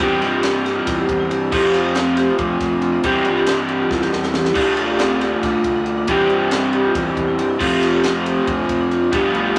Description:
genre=math rock and midwest emo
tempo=276 BPM (eighths)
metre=7/8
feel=straight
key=C major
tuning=A4 = 441 Hz
part: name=vibraphone with medium mallets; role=arpeggios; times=0.0-9.6 s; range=C4 to G4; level=-22 LUFS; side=equal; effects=none
part: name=crunchy overdriven guitar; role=riff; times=0.0-9.6 s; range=G2 to G4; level=-22 LUFS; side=equal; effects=none
part: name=fuzz fingered electric bass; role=bass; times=0.0-9.6 s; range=D2 to G2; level=-29 LUFS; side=equal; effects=overdrive
part: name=crisp fusion drum kit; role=drums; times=0.0-9.6 s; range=crash cymbal, kick drum, ride cymbal, snare drum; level=-30 LUFS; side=equal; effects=none
room=light reverb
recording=none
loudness=-18 LUFS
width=mono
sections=0.0-9.6 A section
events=drum fill 3.9-4.6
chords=0.0 C/E; 1.5 F69; 3.0 C/E; 4.6 Dm7; 6.1 C/E; 7.6 F69

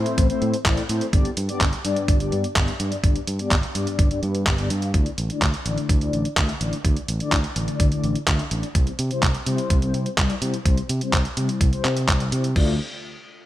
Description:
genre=italo disco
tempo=126 BPM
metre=4/4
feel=straight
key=unclear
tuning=A4 = 440 Hz
part: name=mellow synth brass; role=stabs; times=0.0-12.7 s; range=G2 to F5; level=-27 LUFS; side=left 3 dB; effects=chorus, digital delay
part: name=overdriven fingered electric bass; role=bass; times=0.0-12.8 s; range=G1 to C3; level=-26 LUFS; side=right 1 dB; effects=none
part: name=detuned 8-bit digital drum machine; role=drums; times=0.1-12.7 s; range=crash cymbal, handclaps, hi-hat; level=-26 LUFS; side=right 1 dB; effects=studio ambience
part: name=electronic kick drum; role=drums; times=0.2-12.7 s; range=none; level=-21 LUFS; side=equal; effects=studio ambience
room=digital ambience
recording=none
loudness=-20 LUFS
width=side -14 dB against mid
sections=0.0-12.6 A section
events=filter sweep on analog polysynth 0.0-12.6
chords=0.0 Am; 1.1 G; 4.9 Dsus2; 8.8 C; 12.6 Dm

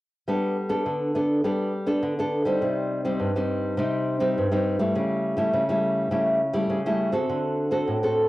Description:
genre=samba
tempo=103 BPM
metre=4/4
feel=straight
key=G major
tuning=A4 = 440 Hz
part: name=nylon-string guitar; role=accompaniment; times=0.3-8.3 s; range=G2 to A4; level=-22 LUFS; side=equal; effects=cassette tape
room=wet studio ambience, RT60 0.5 s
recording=home recording on cassette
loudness=-22 LUFS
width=side -17 dB against mid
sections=0.3-8.3 A section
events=none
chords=0.3 Gadd9; 2.6 Cm; 5.0 A7/C#; 7.3 D7

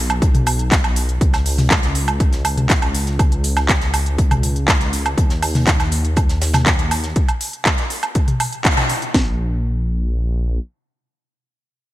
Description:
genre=melodic techno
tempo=121 BPM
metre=4/4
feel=straight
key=unclear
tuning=A4 = 441 Hz
part: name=dark detuned saw bass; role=bass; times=0.0-10.6 s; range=Bb1 to Eb2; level=-20 LUFS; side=equal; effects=sidechain pumping
part: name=techno drum kit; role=drums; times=0.1-9.1 s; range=handclaps, hi-hat, toms, woodblock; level=-19 LUFS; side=equal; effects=overdrive, sidechain pumping on hats, sidechain pumping on perc, sidechain pumping on toms
part: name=house drum kit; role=drums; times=0.2-9.3 s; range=kick drum, snare drum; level=-17 LUFS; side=equal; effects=none
part: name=tight funk drum kit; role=drums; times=0.2-7.2 s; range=hi-hat, snare drum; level=-32 LUFS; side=right 2 dB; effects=sidechain pumping on hats, high-pass filter on hats, high-pass filter on snare, high-pass filter on room
room=light reverb, digital ambience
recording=bright 1980s-style digital production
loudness=-15 LUFS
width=side -15 dB against mid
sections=0.0-9.1 A section; 9.1-11.9 B section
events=drop 0.0-9.1; band accent 8.6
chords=none

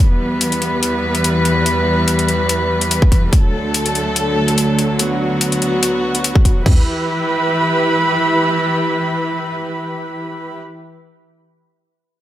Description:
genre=heavy wobble dubstep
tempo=144 BPM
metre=4/4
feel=swing 54% on 16ths, half-time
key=E minor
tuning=A4 = 440 Hz
part: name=warm chamber string section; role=sustained chords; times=0.0-10.6 s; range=D2 to B5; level=-16 LUFS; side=equal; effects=sidechain pumping
part: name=electronic hi-hat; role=drums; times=0.4-6.5 s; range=none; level=-19 LUFS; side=left 3 dB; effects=none
part: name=dubstep drum kit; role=drums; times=3.0-3.4, 6.4-6.8 s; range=crash cymbal, kick drum, toms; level=-12 LUFS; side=equal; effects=none
room=light reverb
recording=none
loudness=-14 LUFS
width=side -13 dB against mid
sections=0.0-6.7 A section; 6.7-10.0 B section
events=none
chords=0.0 Em; 3.3 D; 5.0 Bm/D; 6.7 Em

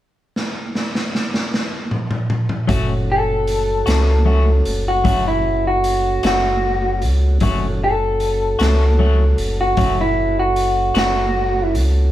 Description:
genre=slow blues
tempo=51 BPM (dotted quarters)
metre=12/8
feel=straight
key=F# minor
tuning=A4 = 439 Hz
part: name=raw garage drum kit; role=drums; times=0.4-11.9 s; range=hi-hat, kick drum, snare drum, toms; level=-23 LUFS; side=equal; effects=none
part: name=clean electric guitar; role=accompaniment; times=2.7-11.2 s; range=F#3 to F#4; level=-23 LUFS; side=left 4 dB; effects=harmonic tremolo
part: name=mellow tonewheel organ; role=sustained chords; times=2.7-12.1 s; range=A3 to A4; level=-29 LUFS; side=right 1 dB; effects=slow rotary speaker
part: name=sub bass with octave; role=bass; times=2.7-12.1 s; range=F#1 to C#2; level=-18 LUFS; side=equal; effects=none
part: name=electric guitar through a small old amp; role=melody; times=3.1-11.7 s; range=E4 to A4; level=-18 LUFS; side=equal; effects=none
room=moderate large studio reverb, RT60 1.2 s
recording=band playing live in one room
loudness=-15 LUFS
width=side -13 dB against mid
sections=0.0-2.7 A section; 2.7-12.1 B section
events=drum fill 0.3-2.7; clean electric guitar solo 2.7-12.1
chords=0.0 N.C.; 2.7 F#m

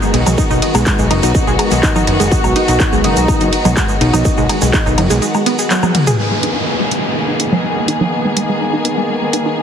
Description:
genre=melodic techno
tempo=124 BPM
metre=4/4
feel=straight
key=G# minor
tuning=A4 = 439 Hz
part: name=muted studio string section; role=sustained chords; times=0.0-9.6 s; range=D#3 to G#4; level=-18 LUFS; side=left 2 dB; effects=sidechain pumping
part: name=wide unison pluck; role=arpeggios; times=0.0-9.6 s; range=F#3 to G#5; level=-18 LUFS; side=right 1 dB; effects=sidechain pumping, dub echo
part: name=egg shaker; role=percussion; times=0.0-6.2 s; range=none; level=-26 LUFS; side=right 5 dB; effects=none
part: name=fat analog bass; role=bass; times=0.1-5.2 s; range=F#1 to B1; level=-16 LUFS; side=equal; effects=sidechain pumping
part: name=techno drum kit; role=drums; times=0.1-9.4 s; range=congas, handclaps, hi-hat, ride cymbal, toms, woodblock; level=-19 LUFS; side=right 1 dB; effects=none
part: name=electronic kick drum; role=drums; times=0.4-4.8 s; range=none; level=-17 LUFS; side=equal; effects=distortion
part: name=wide unison lead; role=melody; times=2.3-3.7 s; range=D#4 to F#4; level=-22 LUFS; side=equal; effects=wide subtle chorus, sidechain pumping, digital delay
part: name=downlifter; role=sound effects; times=6.2-9.6 s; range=none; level=-21 LUFS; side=equal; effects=none
room=moderate lush hall reverb, RT60 2.2 s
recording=heavily compressed radio sound, multiband compression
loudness=-12 LUFS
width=side -8 dB against mid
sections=0.0-6.2 A section; 6.2-9.6 B section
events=drop 0.0-6.2; band accent 5.7; drum fill 5.8-6.2; filter sweep on synth arpeggio sound 6.2-9.6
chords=0.0 B; 6.2 G#madd9

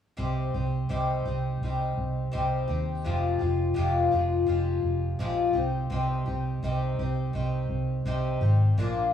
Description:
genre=rock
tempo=84 BPM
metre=4/4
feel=straight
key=C minor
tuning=A4 = 440 Hz
part: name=picked twelve-string acoustic guitar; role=accompaniment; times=0.2-9.1 s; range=F2 to G4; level=-28 LUFS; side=left 4 dB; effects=none
part: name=vintage muted fingered electric bass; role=bass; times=0.2-9.1 s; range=F1 to Eb2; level=-27 LUFS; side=right 1 dB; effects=none
room=wet large studio reverb, RT60 1.2 s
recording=band playing live in one room, small room ambience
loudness=-25 LUFS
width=side -9 dB against mid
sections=0.2-9.1 A section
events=none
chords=0.2 Cm; 3.0 Fmadd9; 5.6 Cm

